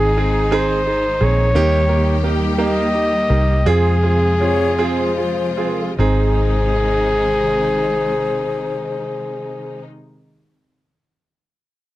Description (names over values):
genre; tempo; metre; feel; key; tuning
six-eight pop ballad; 48-58 BPM (dotted quarters); 6/8; straight; Ab major; A4 = 440 Hz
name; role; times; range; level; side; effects
warm flugelhorn; melody; 0.0-9.8 s; Ab4 to Eb5; -20 LUFS; left 1 dB; none
clear concert grand piano; accompaniment; 0.0-9.8 s; Bb3 to Ab4; -22 LUFS; right 4 dB; none
rich symphonic string section; sustained chords; 0.0-9.8 s; C3 to G4; -24 LUFS; left 1 dB; none
vintage muted fingered electric bass; bass; 0.0-9.8 s; Ab1 to F2; -19 LUFS; equal; none
alto flute; second line; 4.4-9.8 s; C5 to Db5; -24 LUFS; left 7 dB; none
room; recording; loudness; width
little or no reverb; dry, close 1970s-style studio recording; -15 LUFS; side -15 dB against mid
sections
0.0-6.0 A section; 6.0-10.9 B section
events
slowing down 1.6-6.0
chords
0.0 Ab; 1.6 Eb; 3.7 Fm; 6.0 Ab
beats
0.52 | 1.55 2.59 | 3.67 4.79 | 5.99 7.23 | 8.47 9.71